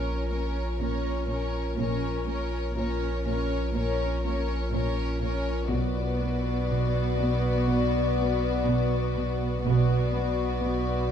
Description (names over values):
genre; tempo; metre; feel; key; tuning
cinematic, suspense film score; 61 BPM; 4/4; straight; unclear; A4 = 440 Hz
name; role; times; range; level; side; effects
warm studio violin section; melody; 0.0-11.1 s; Db5 to D5; -34 LUFS; left 7 dB; none
warm symphonic violin section; second line; 0.0-11.1 s; F#4 to Bb4; -36 LUFS; left 4 dB; none
dark symphonic viola section; accompaniment; 0.0-11.1 s; B3 to Db4; -35 LUFS; right 1 dB; none
glass harmonica; sustained chords; 0.0-11.1 s; F4 to D5; -35 LUFS; left 2 dB; none
warm studio cello section; riff; 0.0-10.9 s; Bb2 to B3; -32 LUFS; right 2 dB; none
warm symphonic cello section; bass; 0.0-11.1 s; Bb2 to B2; -31 LUFS; right 3 dB; none
saturated sub bass; drone; 0.0-11.1 s; Bb1 to B1; -31 LUFS; equal; none
warm symphonic double bass section; bass; 1.8-10.6 s; Bb1 to B1; -32 LUFS; right 5 dB; none
room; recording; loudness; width
moderate scoring stage reverb, RT60 1.9 s; dark, warm production; -25 LUFS; side -8 dB against mid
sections
0.0-11.1 A section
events
none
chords
0.0 Bbm; 5.7 Bm